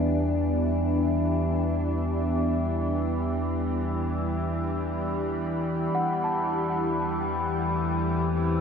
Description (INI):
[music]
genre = ambient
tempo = free time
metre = none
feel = none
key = E minor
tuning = A4 = 441 Hz
[part]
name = evolving wavetable pad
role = sustained chords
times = 0.0-8.6 s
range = E3 to G4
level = -27 LUFS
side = equal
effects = chorus, built-in reverb
[part]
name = warm sub bass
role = bass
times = 0.0-8.6 s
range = E2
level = -30 LUFS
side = equal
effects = none
[part]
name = overtone-sweeping drone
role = drone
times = 0.0-8.6 s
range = E3 to E4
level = -31 LUFS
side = left 1 dB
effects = chorus, built-in reverb
[part]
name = worn celesta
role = arpeggios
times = 5.9-8.6 s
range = F#5 to A5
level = -32 LUFS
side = left 1 dB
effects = tape echo
[sound]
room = wet huge ambient reverb, RT60 8.0 s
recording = worn, warbling old tape, cassette tape, warbly pitch drift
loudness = -24 LUFS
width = side -6 dB against mid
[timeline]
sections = 0.0-8.6 A section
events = none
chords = 0.0 Em7; 5.9 Am7/E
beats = free time